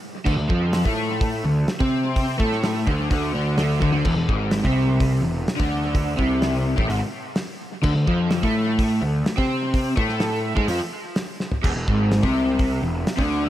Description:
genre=psychedelic rock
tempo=127 BPM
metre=4/4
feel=straight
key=unclear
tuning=A4 = 440 Hz
part: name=overdriven semi-hollow guitar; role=riff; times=0.3-13.5 s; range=E2 to C4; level=-22 LUFS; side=equal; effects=rotary speaker, dub echo
part: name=fuzz picked electric bass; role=bass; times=0.3-13.5 s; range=E1 to C3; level=-26 LUFS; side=equal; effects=overdrive
part: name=cloth-damped thuddy drum kit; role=drums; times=0.3-13.3 s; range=crash cymbal, hi-hat, kick drum, snare drum, toms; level=-25 LUFS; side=equal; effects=dub echo
room=light reverb, studio ambience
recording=echo-heavy mix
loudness=-19 LUFS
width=side -13 dB against mid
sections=0.0-13.5 A section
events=drum fill 11.4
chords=0.3 Dm; 4.1 E; 7.8 Dm; 11.6 E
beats=| 0.26 0.73 1.21 1.68 | 2.16 2.63 3.10 3.58 | 4.05 4.53 5.00 5.47 | 5.95 6.42 6.89 7.37 | 7.84 8.32 8.79 9.26 | 9.74 10.21 10.69 11.16 | 11.63 12.11 12.58 13.06

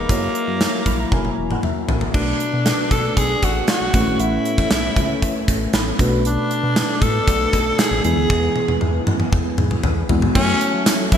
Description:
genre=1980s-style pop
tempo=117 BPM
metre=4/4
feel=straight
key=unclear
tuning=A4 = 441 Hz
part: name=raspy tenor saxophone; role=melody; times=0.0-11.2 s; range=A#3 to A4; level=-22 LUFS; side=equal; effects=ping-pong delay
part: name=mellow FM electric piano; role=accompaniment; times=0.0-11.2 s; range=G#2 to B5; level=-24 LUFS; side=left 1 dB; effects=chorus
part: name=lush unison pad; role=sustained chords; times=0.0-11.2 s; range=E3 to A#4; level=-28 LUFS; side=left 1 dB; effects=chorus
part: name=chorused synth bass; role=bass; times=0.0-11.2 s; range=E1 to F#3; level=-24 LUFS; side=equal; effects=none
part: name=gated 80s drum kit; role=drums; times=0.1-11.2 s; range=crash cymbal, hi-hat, kick drum, snare drum, tambourine, toms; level=-20 LUFS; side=equal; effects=gated reverb
room=wet lush hall reverb, RT60 2.4 s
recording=bright 1980s-style digital production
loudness=-16 LUFS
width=side -8 dB against mid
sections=0.0-2.1 A section; 2.1-10.4 B section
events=FM electric piano fill 0.6-2.1, 5.5-6.3; drum fill 1.1-2.1, 8.3-10.4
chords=0.1 F#7; 2.1 Bm7; 3.9 Aadd9; 6.0 Bm7; 8.0 E; 10.4 F#m7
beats=| 0.10 0.61 1.12 1.64 | 2.15 2.66 3.17 3.69 | 4.20 4.71 5.23 5.74 | 6.25 6.76 7.28 7.79 | 8.30 8.82 9.33 9.84 | 10.35 10.87

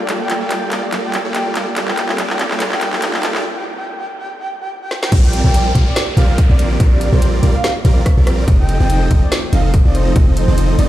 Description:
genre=future bass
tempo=143 BPM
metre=4/4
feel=swing 55% on 16ths, half-time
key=Bb major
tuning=A4 = 440 Hz
part: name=breathy flute-like synth lead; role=melody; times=0.0-10.9 s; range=C5 to G5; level=-24 LUFS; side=equal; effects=lush chorus, sidechain pumping, dub echo
part: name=ethereal airy pad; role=sustained chords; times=0.0-10.9 s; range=D3 to Bb4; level=-28 LUFS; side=right 1 dB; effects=ensemble chorus, built-in reverb, sidechain pumping
part: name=riser and downlifter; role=sound effects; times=0.4-8.5 s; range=none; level=-31 LUFS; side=equal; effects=none
part: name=supersaw chords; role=riff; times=0.1-10.9 s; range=F3 to Eb5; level=-22 LUFS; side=right 1 dB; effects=sidechain pumping
part: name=trap drum kit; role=drums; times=0.1-10.9 s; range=crash cymbal, handclaps, hi-hat, rim click, snare drum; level=-22 LUFS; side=equal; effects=none
part: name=warm 808-style bass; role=bass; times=5.1-10.9 s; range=F1 to Bb1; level=-13 LUFS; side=equal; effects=sidechain pumping
part: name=electronic kick drum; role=drums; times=5.1-10.2 s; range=none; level=-12 LUFS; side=equal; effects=none
room=light reverb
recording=played on a big sound system in a bare room, stone room reverb, high-pass filter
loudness=-12 LUFS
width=side -14 dB against mid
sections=0.0-5.1 A section; 5.1-10.9 B section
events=build-up 0.0-5.1; drum fill 0.0-3.4, 4.9; break 3.4-5.1; drop 5.1-10.9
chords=0.0 Gm9; 1.6 Cm7; 5.1 Bb69; 8.5 F7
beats=| 0.09 0.51 0.93 1.34 | 1.76 2.18 2.60 3.02 | 3.44 3.86 4.28 4.70 | 5.12 5.54 5.96 6.38 | 6.80 7.22 7.64 8.06 | 8.48 8.90 9.32 9.74 | 10.16 10.57

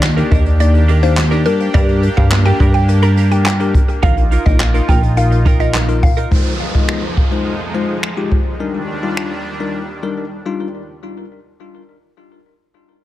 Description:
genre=dance-pop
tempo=105 BPM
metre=4/4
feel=straight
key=Eb major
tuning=A4 = 439 Hz
part: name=bell-like tine electric piano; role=accompaniment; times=0.0-10.7 s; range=G3 to F5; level=-22 LUFS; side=left 5 dB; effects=tape echo
part: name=supersaw pad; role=sustained chords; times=0.0-10.9 s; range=Eb2 to G4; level=-26 LUFS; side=right 1 dB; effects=sidechain pumping
part: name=direct-recorded clean electric guitar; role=riff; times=0.0-6.3 s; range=D4 to Bb4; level=-24 LUFS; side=right 8 dB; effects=analog chorus
part: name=plucky analog bass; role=bass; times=0.0-6.3 s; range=Bb1 to G3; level=-14 LUFS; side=equal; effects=sidechain pumping
part: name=jazz brush drum kit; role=drums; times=0.0-9.3 s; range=finger snaps, handclaps, hi-hat, kick drum, snare drum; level=-15 LUFS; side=equal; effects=none
part: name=mallet-like synth pluck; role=melody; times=0.3-6.1 s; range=Bb4 to Bb5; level=-22 LUFS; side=equal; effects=chorus, phaser, tape echo
part: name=downlifter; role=sound effects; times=6.3-10.9 s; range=none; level=-28 LUFS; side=right 1 dB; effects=none
room=light reverb, small room ambience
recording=echo-heavy mix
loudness=-12 LUFS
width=side -14 dB against mid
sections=0.0-6.3 A section; 6.3-10.9 B section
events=drop 0.0-6.3; drums muted 10.3-10.9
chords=0.0 Ebmaj7; 1.5 Gm; 4.0 Bbsus4; 6.3 Fm7; 8.6 Ebmaj7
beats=0.03 0.60 1.17 | 1.75 2.32 2.89 3.46 | 4.03 4.60 5.17 5.75 | 6.32 6.89 7.46 8.03 | 8.60 9.17 9.74 10.32

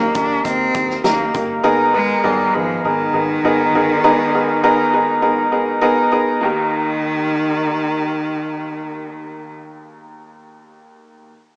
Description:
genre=piano-driven pop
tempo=101 BPM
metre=4/4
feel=straight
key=unclear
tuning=A4 = 436 Hz
part: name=clear cello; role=melody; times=0.0-9.6 s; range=Eb3 to D4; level=-21 LUFS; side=equal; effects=none
part: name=bright upright piano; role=accompaniment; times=0.0-11.3 s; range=Eb2 to C5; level=-16 LUFS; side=equal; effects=none
part: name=fingered electric bass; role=bass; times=0.0-4.0 s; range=G1 to Eb2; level=-32 LUFS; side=equal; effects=none
part: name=loose indie drum kit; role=drums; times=0.1-1.5 s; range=hi-hat, kick drum, snare drum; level=-24 LUFS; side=equal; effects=none
room=moderate spring reverb, RT60 2.1 s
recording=cassette tape, small speaker sound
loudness=-14 LUFS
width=side -35 dB against mid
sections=0.0-6.4 A section; 6.4-8.8 B section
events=none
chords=0.0 Eb; 1.7 Abmadd9; 6.4 Eb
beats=0.46 1.05 | 1.65 2.25 2.84 3.44 | 4.04 4.63 5.23 5.82 | 6.42 7.01 7.61 8.20

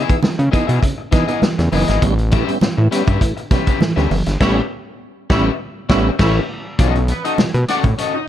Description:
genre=funk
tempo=101 BPM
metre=4/4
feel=straight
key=unclear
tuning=A4 = 440 Hz
part: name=electric guitar at the edge of break-up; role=accompaniment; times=0.0-8.2 s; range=B3 to F#5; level=-22 LUFS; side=left 6 dB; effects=plate reverb
part: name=tonewheel organ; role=stabs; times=0.0-6.4 s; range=A2 to D#4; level=-22 LUFS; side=right 3 dB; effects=overdrive, chorus vibrato, slow rotary speaker, plate reverb
part: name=vintage drum kit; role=drums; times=0.1-8.1 s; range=crash cymbal, hi-hat, kick drum, snare drum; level=-18 LUFS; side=equal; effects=none
part: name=fat analog bass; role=bass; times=0.2-7.9 s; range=F#1 to C#3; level=-17 LUFS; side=equal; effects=none
part: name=congas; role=percussion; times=0.2-8.0 s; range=none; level=-24 LUFS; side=right 5 dB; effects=none
part: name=clear horn section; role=second line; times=4.4-8.3 s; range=G3 to D#5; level=-24 LUFS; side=right 2 dB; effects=plate reverb
room=light reverb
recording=dark, warm production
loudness=-14 LUFS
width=side -11 dB against mid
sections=0.0-6.8 A section; 6.8-8.3 B section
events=band accent 4.4-6.8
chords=0.0 C#m9; 2.0 A9; 6.8 B9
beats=0.23 0.83 1.42 | 2.02 2.62 3.21 3.81 | 4.41 5.00 5.60 6.19 | 6.79 7.38 7.98

